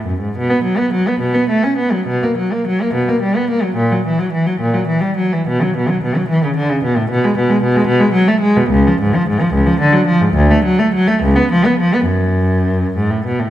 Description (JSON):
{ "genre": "classical, baroque-style suite movement for unaccompanied cello", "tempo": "72 BPM (dotted quarters)", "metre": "6/8", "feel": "uneven beats, rubato", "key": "unclear", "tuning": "A4 = 440 Hz", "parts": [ { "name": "rich cello", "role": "solo", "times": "0.0-13.5 s", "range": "C#2 to C#4", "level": "-12 LUFS", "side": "equal", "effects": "none" } ], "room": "wet recital hall reverb, RT60 1.4 s", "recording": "none", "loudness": "-12 LUFS", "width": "side -12 dB against mid", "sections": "0.4-13.5 A section", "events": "none", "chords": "none" }